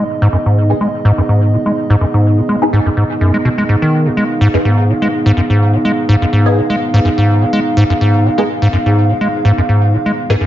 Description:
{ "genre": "house", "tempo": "125 BPM", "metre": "4/4", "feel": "swing 54% on 16ths", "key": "G# dorian", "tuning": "A4 = 440 Hz", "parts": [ { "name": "dark analog pad", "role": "sustained chords", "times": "0.0-10.5 s", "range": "B3 to E#5", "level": "-16 LUFS", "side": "right 1 dB", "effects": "chorus" }, { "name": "acid bass, square", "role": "riff", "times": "0.0-10.5 s", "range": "F#2 to G#3", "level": "-12 LUFS", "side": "equal", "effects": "dub echo" }, { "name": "filtered dub chord stab", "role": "stabs", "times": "0.7-10.4 s", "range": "B3 to G#4", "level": "-20 LUFS", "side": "equal", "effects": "phaser, ensemble chorus, analog delay" } ], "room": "light reverb", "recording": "echo-heavy mix, nothing above 7.5 kHz", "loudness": "-10 LUFS", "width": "side -12 dB against mid", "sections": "0.0-10.5 A section", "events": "filter sweep on synth stab 0.0-10.5", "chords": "0.0 G#m", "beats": "| 0.09 0.57 1.05 1.53 | 2.01 2.49 2.97 3.45 | 3.93 4.41 4.89 5.37 | 5.85 6.33 6.81 7.29 | 7.77 8.25 8.73 9.21 | 9.69 10.17" }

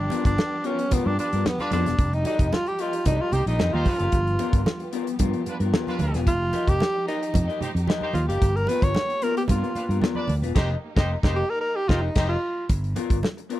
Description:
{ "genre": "funk", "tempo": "112 BPM", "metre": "4/4", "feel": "straight", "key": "unclear", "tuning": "A4 = 440 Hz", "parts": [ { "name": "breathy tenor saxophone", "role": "melody", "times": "0.0-12.7 s", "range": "B3 to C#5", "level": "-26 LUFS", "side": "right 1 dB", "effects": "none" }, { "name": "warm studio string section", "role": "sustained chords", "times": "0.0-12.7 s", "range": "F3 to G4", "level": "-36 LUFS", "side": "right 1 dB", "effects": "none" }, { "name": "fingered electric bass", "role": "bass", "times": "0.0-13.2 s", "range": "E1 to G2", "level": "-25 LUFS", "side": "equal", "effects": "none" }, { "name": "electric guitar through a small old amp", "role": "accompaniment", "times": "0.1-13.6 s", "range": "B3 to F5", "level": "-30 LUFS", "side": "left 6 dB", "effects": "none" }, { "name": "warm soul drum kit", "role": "drums", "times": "0.1-13.6 s", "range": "crash cymbal, hi-hat, kick drum, snare drum", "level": "-24 LUFS", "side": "equal", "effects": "none" }, { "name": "congas", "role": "percussion", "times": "0.1-13.4 s", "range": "none", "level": "-32 LUFS", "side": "right 5 dB", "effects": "none" }, { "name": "clear horn section", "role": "second line", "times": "1.2-12.3 s", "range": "D4 to D5", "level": "-33 LUFS", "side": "right 2 dB", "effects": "none" } ], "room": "small room reverb", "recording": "none", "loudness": "-21 LUFS", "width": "side -14 dB against mid", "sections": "0.0-12.7 A section", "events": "tenor saxophone solo 0.0-12.7; band accent 10.6-12.7", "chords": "0.0 G7#9; 2.0 F9sus4; 4.1 G7#9; 6.3 F9sus4; 8.4 G7#9; 10.6 F9sus4; 12.7 G7#9", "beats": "0.38 0.92 1.45 | 1.99 2.52 3.06 3.60 | 4.13 4.67 5.20 5.74 | 6.27 6.81 7.34 7.88 | 8.41 8.95 9.49 10.02 | 10.56 11.09 11.63 12.17 | 12.70 13.24" }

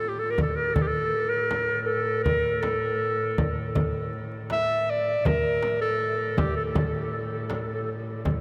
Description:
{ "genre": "Arabic maqam ensemble", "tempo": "80 BPM", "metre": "4/4", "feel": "straight", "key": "A maqam hijaz", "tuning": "A4 = 441 Hz", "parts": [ { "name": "warm clarinet", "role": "melody", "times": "0.0-7.9 s", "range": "G4 to E5", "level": "-28 LUFS", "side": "equal", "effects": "analog delay" }, { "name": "clear double bass", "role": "drone", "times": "0.0-8.4 s", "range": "A2", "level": "-38 LUFS", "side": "equal", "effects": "none" }, { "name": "darbuka", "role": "percussion", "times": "0.4-8.4 s", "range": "none", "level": "-34 LUFS", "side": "equal", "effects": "none" }, { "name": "frame drum", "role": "percussion", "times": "0.4-8.4 s", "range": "none", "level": "-33 LUFS", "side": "equal", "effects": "none" } ], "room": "wet huge ambient reverb, RT60 7.3 s", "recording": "dreamy mix soaked in reverb", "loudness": "-26 LUFS", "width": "mono", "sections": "0.0-8.4 A section", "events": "none", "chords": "none", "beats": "0.02 0.77 1.51 | 2.26 3.01 3.76 4.51 | 5.25 6.00 6.75 7.50 | 8.24" }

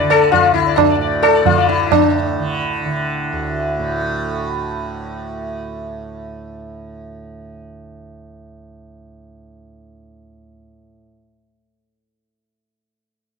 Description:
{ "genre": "indian classical, Hindustani", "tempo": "133 BPM", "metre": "5/4", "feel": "straight", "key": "unclear", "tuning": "A4 = 440 Hz", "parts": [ { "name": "sitar", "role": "melody", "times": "0.0-5.6 s", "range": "D4 to D5", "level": "-17 LUFS", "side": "left 9 dB", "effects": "none" }, { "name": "tanpura", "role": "drone", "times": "0.0-10.9 s", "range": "D2 to D3", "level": "-24 LUFS", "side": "right 2 dB", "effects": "none" }, { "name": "tabla", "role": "percussion", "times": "0.1-2.1 s", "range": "none", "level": "-17 LUFS", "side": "right 12 dB", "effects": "none" } ], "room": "light reverb, studio reverb", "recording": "1960s-style stereo with parts hard left and right", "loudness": "-15 LUFS", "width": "side -4 dB against mid", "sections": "0.0-1.9 A section; 1.9-4.2 B section", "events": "none", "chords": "none", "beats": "0.10 0.55 1.00 1.46 | 1.91 2.36 2.81 3.27 3.72" }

